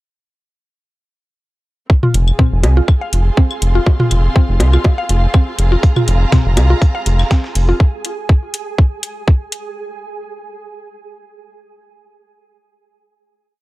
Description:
minimal techno; 122 BPM; 4/4; swing 54% on 16ths; F minor; A4 = 441 Hz
electronic kick drum; drums; 1.9-9.4 s; -10 LUFS; equal
flickering grainy texture; texture; 2.2-9.8 s; Ab4; -29 LUFS; right 4 dB; built-in reverb, sidechain pumping
rich symphonic string section; texture; 1.9-7.8 s; C4 to C6; -26 LUFS; equal; sidechain pumping
mallet-like synth pluck; riff; 2.0-7.7 s; C4 to F5; -22 LUFS; equal; chorus, sidechain pumping, tape echo
electronic toms, claves and bongos; percussion; 2.0-7.3 s; -18 LUFS; left 1 dB
round analog bass; bass; 2.1-7.7 s; F1 to C2; -12 LUFS; equal; sidechain pumping
electronic hi-hat; drums; 2.1-9.6 s; -22 LUFS; left 2 dB
dusty soul sampler-style drum kit; drums; 5.8-7.7 s; hi-hat, snare drum; -30 LUFS; left 1 dB; high-pass filter on hats, high-pass filter on snare
little or no reverb; dry, gritty hardware recording; -12 LUFS; side -19 dB against mid
1.9-9.8 groove
fade-in on string section 1.9-7.8
1.9 F5
| 1.90 2.39 2.88 3.37 | 3.87 4.36 4.85 5.34 | 5.83 6.32 6.82 7.31 | 7.80 8.29 8.78 9.28

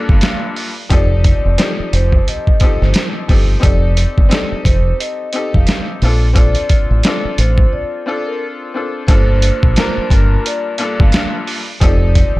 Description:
hip hop, boom-bap hip-hop; 88 BPM; 4/4; swing 60% on 16ths; G minor; A4 = 436 Hz
vibraphone with soft mallets; melody; 0.0-12.4 s; Bb4 to F5; -23 LUFS; equal; high-pass filter, low-pass filter, ping-pong delay
bright upright piano; accompaniment; 0.0-12.4 s; G2 to Bb4; -22 LUFS; left 2 dB; cassette tape, high-pass filter, low-pass filter
deep dub fingered electric bass; bass; 0.1-12.4 s; F1 to Bb1; -13 LUFS; equal
trip hop sampler-style drum kit; drums; 0.1-12.3 s; hi-hat, kick drum, snare drum; -14 LUFS; equal
digital ambience; -12 LUFS; side -19 dB against mid
0.0-9.1 A section; 9.1-12.4 B section
break 7.7-9.1
0.0 Gm7; 0.9 F7; 6.0 Bbmaj7; 9.1 Gm7; 11.8 F7
0.22 | 0.91 1.59 2.27 2.95 | 3.63 4.32 5.00 5.68 | 6.36 7.04 7.72 8.41 | 9.09 9.77 10.45 11.13 | 11.81

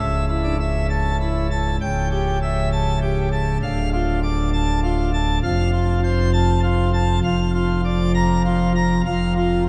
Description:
classical, organ toccata; 99 BPM; 3/4; straight; A4 = 441 Hz
pipe organ, plenum; solo; 0.0-9.7 s; C#1 to Bb5; -20 LUFS; equal
moderate huge ambient reverb, RT60 7.7 s; in a vast, echoing space; -20 LUFS; mono
0.0-9.7 A section
0.0 A/C#; 1.8 A7/C#; 3.6 Dm; 5.4 F; 7.2 Bb/F; 9.1 N.C.
0.58 1.19 | 1.80 2.41 3.02 | 3.62 4.22 4.82 | 5.43 6.03 6.63 | 7.24 7.84 8.45 | 9.05 9.67

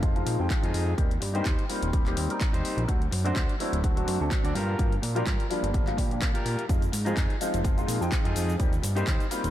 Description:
filtered disco house; 126 BPM; 4/4; swing 55% on 16ths; F dorian; A4 = 440 Hz
clear grand piano; accompaniment; 0.0-9.5 s; F3 to G5; -31 LUFS; left 1 dB; phaser, sidechain pumping, low-pass filter
clean electric guitar; riff; 0.0-9.3 s; D4 to D5; -36 LUFS; equal; sidechain pumping, low-pass filter
fat analog bass; bass; 0.0-9.5 s; D1 to Bb2; -29 LUFS; equal; sidechain pumping, low-pass filter
electronic kick drum; drums; 0.0-9.2 s; -26 LUFS; equal
house drum kit; drums; 0.0-9.5 s; handclaps, hi-hat, shaker; -36 LUFS; left 1 dB
tambourine; percussion; 0.0-9.5 s; -59 LUFS; left 6 dB
light reverb; -24 LUFS; side -12 dB against mid
0.0-9.5 A section
filter sweep 0.0-9.5
0.0 Fm7; 1.0 Eb6; 2.9 D7; 4.6 Gm7; 6.7 Fm7; 8.6 Eb6
0.03 0.50 | 0.98 1.46 1.93 2.41 | 2.88 3.36 3.84 4.31 | 4.79 5.26 5.74 6.22 | 6.69 7.17 7.65 8.12 | 8.60 9.07

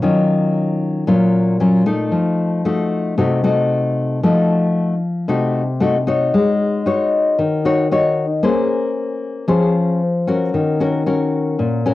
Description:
bossa nova; 114 BPM; 4/4; straight; Bb minor; A4 = 437 Hz
nylon-string guitar; solo; 0.0-11.9 s; Bb2 to Db5; -15 LUFS; left 2 dB
wet studio reverb, RT60 0.6 s; home recording on cassette; -15 LUFS; side -16 dB against mid
0.0-10.5 A section; 10.5-11.9 B section
0.0 Ebm9; 2.1 F7b9; 6.3 Ab7sus4; 8.4 Bbm9; 10.5 D#m7
| 0.03 0.56 1.08 1.61 | 2.13 2.66 3.18 3.71 | 4.23 4.76 5.28 5.81 | 6.33 6.86 7.38 7.91 | 8.44 8.96 9.49 10.01 | 10.54 11.06 11.59

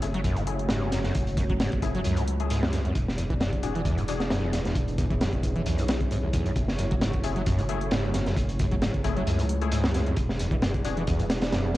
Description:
breakbeat, breaks; 133 BPM; 4/4; swing 54% on 16ths; F# minor; A4 = 439 Hz
dark analog pad; sustained chords; 0.0-11.8 s; A3 to D5; -35 LUFS; equal; chorus, sidechain pumping, cassette tape
orchestra-hit-like synth stab; stabs; 0.0-11.0 s; A3 to G#4; -36 LUFS; left 7 dB; built-in reverb, cassette tape, tape echo
saturated sub bass; bass; 0.0-11.8 s; E1 to C#2; -30 LUFS; equal; tube saturation
crunchy breakbeat drum kit; drums; 0.0-11.8 s; hi-hat, kick drum, snare drum; -28 LUFS; equal; cassette tape
electronic hi-hat; drums; 0.0-11.8 s; -46 LUFS; equal; cassette tape
overdriven acid bass; riff; 0.1-11.8 s; D2 to F#3; -30 LUFS; equal; distortion, ensemble chorus, cassette tape, tape echo
light reverb, studio reverb; home recording on cassette; -24 LUFS; side -16 dB against mid
0.0-11.8 A section
0.0 F#m7; 3.0 E7; 6.6 F#m7; 10.2 E7
0.25 0.70 | 1.15 1.60 2.05 2.50 | 2.95 3.40 3.85 4.31 | 4.76 5.21 5.66 6.11 | 6.56 7.01 7.46 7.92 | 8.37 8.82 9.27 9.72 | 10.17 10.62 11.07 11.53

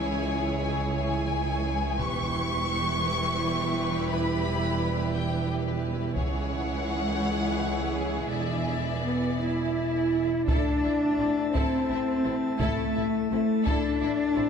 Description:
cinematic, epic orchestral film score; 57 BPM (dotted quarters); 6/8; straight; A minor from 10.5 s; A4 = 440 Hz
warm symphonic violin section; melody; 0.0-14.4 s; C5 to C#6; -33 LUFS; left 3 dB
warm symphonic violin section; second line; 0.0-14.4 s; C4 to D5; -35 LUFS; left 3 dB
warm symphonic viola section; accompaniment; 0.0-14.4 s; E3 to E4; -36 LUFS; right 2 dB
mellow French horn section; sustained chords; 0.0-14.5 s; G3 to E4; -29 LUFS; left 2 dB
clear symphonic double bass section; bass; 0.0-14.5 s; E1 to C#2; -33 LUFS; right 4 dB
rich symphonic cello section; bass; 0.0-14.5 s; C#2 to E4; -33 LUFS; right 3 dB
taiko ensemble; drums; 2.0-14.3 s; -30 LUFS; equal
chamber organ, sparkling flutes; sustained chords; 10.5-14.5 s; A3 to A5; -34 LUFS; equal
wet concert hall reverb, RT60 1.7 s; -25 LUFS; side -6 dB against mid
0.0-10.5 A section; 10.5-14.5 B section
0.0 C#m; 2.0 Em; 6.2 C#m; 8.3 E7; 10.5 Am
0.92 | 1.99 3.04 | 4.08 5.12 | 6.16 7.23 | 8.30 9.40 | 10.48 11.54 | 12.60 13.66

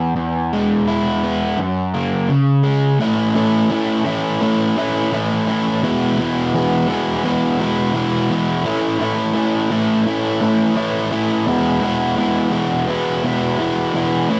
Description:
rock; 85 BPM; 4/4; straight; A4 = 440 Hz
overdriven semi-hollow guitar; solo; 0.0-14.4 s; E2 to E4; -18 LUFS; equal
light reverb; dry, close 1970s-style studio recording; -18 LUFS; mono
0.0-3.0 A section; 3.0-14.4 B section
0.0 E; 1.6 F#; 2.3 C#5; 3.0 A; 5.8 E; 8.7 A; 11.5 E
| 0.17 0.88 1.59 2.30 | 3.01 3.71 4.42 5.13 | 5.83 6.54 7.24 7.95 | 8.66 9.36 10.07 10.78 | 11.48 12.19 12.90 13.60 | 14.31

